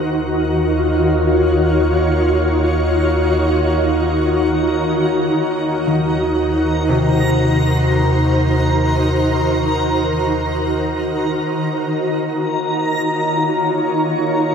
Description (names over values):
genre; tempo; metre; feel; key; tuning
ambient; free time; none; none; Eb dorian; A4 = 443 Hz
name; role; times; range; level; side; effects
shimmering ambient pad; sustained chords; 0.0-14.5 s; Eb3 to Db5; -16 LUFS; equal; chorus, built-in reverb
round analog bass; bass; 0.0-11.4 s; Eb2; -22 LUFS; equal; none
pedal harmonium; drone; 0.0-14.5 s; Eb3 to Bb3; -31 LUFS; equal; none
backwards swelling texture; texture; 0.3-14.5 s; Bb5; -25 LUFS; left 1 dB; built-in reverb
concert harp; arpeggios; 5.9-10.8 s; C3 to Eb3; -20 LUFS; left 1 dB; ping-pong delay
room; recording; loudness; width
wet huge ambient reverb, RT60 9.2 s; none; -15 LUFS; side -7 dB against mid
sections
0.0-11.5 A section; 11.5-14.5 B section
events
fade-in on synth texture 0.0-11.5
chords
0.0 Ebm7; 5.4 Ebm6; 11.5 Ebm7